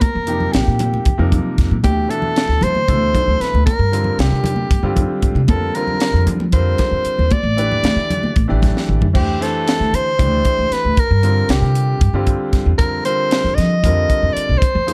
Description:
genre	electric jazz fusion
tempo	230 BPM (eighths)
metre	7/8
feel	straight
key	unclear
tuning	A4 = 439 Hz
part	clear soprano saxophone	melody	0.0-14.9 s	G4 to Eb5	-22 LUFS	equal	slapback echo
part	upright bass	bass	0.0-14.9 s	A1 to F3	-20 LUFS	equal	none
part	tight funk drum kit	drums	0.0-14.9 s	crash cymbal, hi-hat, kick drum, snare drum, toms	-20 LUFS	equal	none
part	congas	percussion	0.0-9.1 s	none	-26 LUFS	equal	none
part	clear concert grand piano	accompaniment	0.3-14.9 s	B2 to D5	-26 LUFS	equal	none
room	little or no reverb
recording	dark, warm production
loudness	-16 LUFS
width	mono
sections	0.0-9.1 A section; 9.1-14.9 A section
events	drum fill 8.7-9.1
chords	0.0 Bbsus24; 1.8 D7sus2; 3.7 C9sus4; 5.5 Fsus4; 7.3 Dsus24; 9.1 D9sus4; 11.0 C9sus4; 12.8 F13sus4

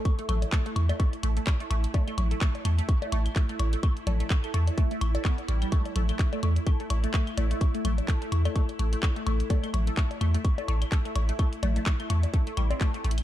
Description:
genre	minimal techno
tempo	127 BPM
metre	4/4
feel	swing 57% on 16ths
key	unclear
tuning	A4 = 440 Hz
part	swarming drone	texture	0.0-13.2 s	E4	-40 LUFS	right 3 dB	built-in reverb, sidechain pumping
part	electronic kick drum	drums	0.1-12.9 s	none	-24 LUFS	equal	none
part	garage drum kit	drums	0.1-13.2 s	handclaps, hi-hat	-37 LUFS	equal	none
part	woodblock, congas, claves and bongos	percussion	0.1-13.2 s	none	-37 LUFS	left 5 dB	tape echo
part	resonant blip pluck	riff	0.2-13.1 s	G3 to A4	-35 LUFS	left 1 dB	phaser, analog chorus, sidechain pumping, digital delay
part	punchy sub bass	bass	0.3-13.2 s	A1 to E2	-25 LUFS	equal	sidechain pumping
room	digital ambience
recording	dark, warm production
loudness	-24 LUFS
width	side -13 dB against mid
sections	0.0-13.2 A section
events	drum fill 13.0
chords	0.0 A5

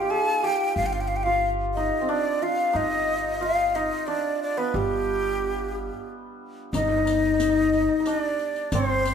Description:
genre	Persian modal ensemble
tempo	90 BPM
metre	3/4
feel	straight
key	G dastgah homayun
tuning	A4 = 440 Hz
part	breathy jazz flute	melody	0.0-9.1 s	G4 to Ab5+42c	-25 LUFS	equal	none
part	santur	second line	0.0-9.1 s	G3 to Ab4+45c	-26 LUFS	left 1 dB	none
part	upright bass	bass	0.8-9.1 s	G1	-30 LUFS	right 1 dB	none
part	riq	percussion	6.7-9.1 s	none	-34 LUFS	left 3 dB	none
room	wet large studio reverb, RT60 1.3 s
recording	band playing live in one room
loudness	-22 LUFS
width	side -7 dB against mid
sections	0.0-6.7 A section; 6.7-9.1 B section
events	none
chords	none

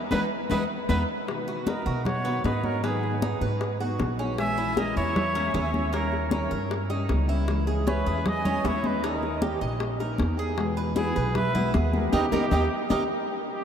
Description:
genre	latin, Cuban son and guajira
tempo	155 BPM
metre	4/4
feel	straight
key	unclear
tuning	A4 = 441 Hz
part	warm trumpet	melody	0.1-13.6 s	G4 to E5	-32 LUFS	equal	slapback echo
part	breathy bright jazz flute	second line	0.1-13.0 s	A#4 to G#5	-36 LUFS	right 2 dB	none
part	nylon-string guitar	accompaniment	0.1-13.0 s	B2 to G#4	-32 LUFS	left 3 dB	none
part	Cuban tres	arpeggios	0.1-13.0 s	A#3 to D#5	-32 LUFS	right 3 dB	none
part	upright bass	bass	0.1-13.0 s	A#1 to B2	-29 LUFS	equal	none
part	bongos	percussion	0.1-13.0 s	none	-34 LUFS	left 5 dB	none
part	congas	percussion	0.1-13.0 s	none	-33 LUFS	left 1 dB	none
room	wet huge ambient reverb, RT60 7.3 s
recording	in a vast, echoing space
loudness	-24 LUFS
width	side -8 dB against mid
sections	0.0-1.3 A section; 1.3-13.6 B section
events	band accent 0.0-1.3, 12.1-13.6; drum fill 0.5-1.3, 12.1-13.6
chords	0.0 Emaj7; 1.3 Bmaj7; 2.8 G#m7; 4.4 A#m7b5; 5.9 D#7; 7.5 C#m; 9.0 D#; 10.6 Eadd9; 12.1 D#7

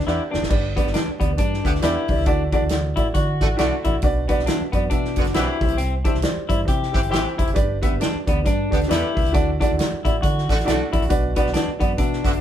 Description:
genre	uptempo 1960s-style soul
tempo	136 BPM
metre	4/4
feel	swing 60% on 8ths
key	G major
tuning	A4 = 440 Hz
part	dark upright piano	accompaniment	0.0-12.4 s	G2 to E5	-24 LUFS	right 1 dB	none
part	electric guitar through a small old amp	riff	0.0-12.4 s	B3 to G4	-26 LUFS	left 4 dB	none
part	vintage muted fingered electric bass	bass	0.0-12.4 s	F1 to D3	-26 LUFS	equal	none
part	natural country drum kit	drums	0.0-12.4 s	crash cymbal, hi-hat, kick drum, snare drum	-22 LUFS	equal	none
part	mellow horn section	second line	0.1-12.3 s	D3 to G4	-28 LUFS	right 2 dB	none
room	moderate studio reverb, RT60 0.8 s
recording	band playing live in one room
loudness	-18 LUFS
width	side -10 dB against mid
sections	0.5-12.4 A section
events	drum fill 0.1-0.5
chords	0.0 G; 2.3 Dadd9; 4.0 Bm; 5.6 C; 7.6 G; 9.3 Dadd9; 11.1 Bm

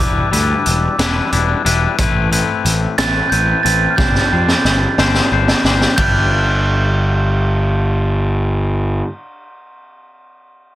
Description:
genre	indie rock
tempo	60 BPM (dotted quarters)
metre	6/8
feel	straight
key	G major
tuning	A4 = 439 Hz
part	glockenspiel with rubber mallets	melody	0.0-9.0 s	D6 to A6	-20 LUFS	right 4 dB	tape echo
part	twangy electric guitar	riff	0.0-9.5 s	G3 to C5	-20 LUFS	left 7 dB	none
part	fuzz picked electric bass	bass	0.0-9.0 s	E1 to F2	-17 LUFS	equal	overdrive
part	raw garage drum kit	drums	0.3-6.1 s	hi-hat, kick drum, ride cymbal, snare drum	-18 LUFS	equal	none
room	light reverb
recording	dense, heavily limited modern master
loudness	-13 LUFS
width	side -14 dB against mid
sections	0.0-6.0 A section; 6.0-10.0 B section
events	drum fill 4.0-6.0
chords	0.0 Em7; 2.0 Amadd9; 4.0 Gsus4; 6.0 G

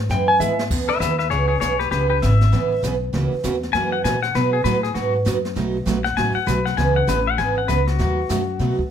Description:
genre	country, western swing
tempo	198 BPM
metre	4/4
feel	swing 62% on 8ths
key	E major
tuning	A4 = 445 Hz
part	upright bass	bass	0.0-8.8 s	G#1 to B2	-22 LUFS	left 1 dB	none
part	clean lap steel guitar	melody	0.1-0.6 s	E5 to G#5	-19 LUFS	equal	plate reverb
part	picked steel-string acoustic guitar	accompaniment	0.1-8.8 s	B2 to G#4	-23 LUFS	right 5 dB	none
part	jazz brush drum kit	drums	0.1-8.9 s	brushed snare drum, crash cymbal, hi-hat, kick drum, snare drum	-30 LUFS	equal	none
part	warm upright piano	accompaniment	0.4-0.6 s	G#3 to B4	-32 LUFS	left 6 dB	none
part	pedal steel guitar	second line	0.9-8.8 s	F#4 to G#5	-22 LUFS	left 8 dB	none
room	moderate club reverb, RT60 0.9 s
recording	none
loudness	-18 LUFS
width	side -8 dB against mid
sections	0.7-8.9 A section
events	drum fill 0.4-0.7; pedal steel guitar solo 0.7-8.9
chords	0.0 E; 0.7 E6; 1.9 C#m7; 3.1 F#7/C#; 4.3 B; 5.6 B7; 6.8 C#m7; 8.0 B7

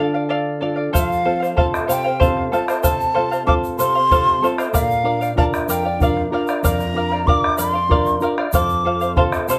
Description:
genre	andean folk, Andean ensemble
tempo	63 BPM (dotted quarters)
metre	6/8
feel	straight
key	unclear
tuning	A4 = 440 Hz
part	large quena	melody	0.0-9.6 s	F5 to D6	-23 LUFS	equal	none
part	charango	accompaniment	0.0-9.6 s	A4 to F5	-24 LUFS	equal	none
part	nylon-string guitar	accompaniment	0.0-9.6 s	F2 to Bb4	-26 LUFS	equal	none
part	bombo	percussion	0.9-9.5 s	none	-24 LUFS	equal	none
part	tube shaker	percussion	1.0-9.6 s	none	-33 LUFS	equal	none
room	moderate studio ambience, RT60 0.5 s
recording	band playing live in one room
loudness	-18 LUFS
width	mono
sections	0.9-9.6 A section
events	break 0.0-0.9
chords	0.0 Dm; 0.9 F; 4.7 Bb; 8.5 F

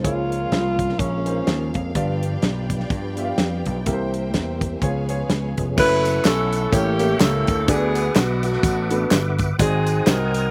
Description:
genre	uptempo gospel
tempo	126 BPM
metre	4/4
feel	swing 57% on 8ths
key	F# minor from 5.8 s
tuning	A4 = 440 Hz
part	mellow alto saxophone	melody	0.0-1.7 s	Db4 to F4	-27 LUFS	equal	none
part	clear concert grand piano	accompaniment	0.0-10.4 s	G2 to F5	-29 LUFS	equal	none
part	tonewheel organ	sustained chords	0.0-10.5 s	E3 to D#6	-33 LUFS	equal	slow rotary speaker, overdrive, chorus vibrato
part	warm symphonic string section	sustained chords	0.0-5.8 s	Db4 to Ab5	-38 LUFS	equal	none
part	vintage slap bass	bass	0.0-10.5 s	F1 to G2	-27 LUFS	equal	none
part	modern studio drum kit	drums	0.0-10.4 s	crash cymbal, hi-hat, kick drum, snare drum	-24 LUFS	equal	none
part	bright saxophone section	melody	5.8-10.5 s	A3 to B4	-24 LUFS	equal	slapback echo
part	tambourine and handclaps	percussion	5.8-10.4 s	none	-35 LUFS	equal	none
room	little or no reverb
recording	recorded outdoors, with no room sound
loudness	-21 LUFS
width	mono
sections	0.0-5.8 A section; 5.8-10.5 B section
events	none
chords	0.0 Db6; 2.0 G7; 3.9 C7; 4.8 Db7; 5.8 F#m7; 6.7 A7b9; 7.7 D6; 9.6 G#7

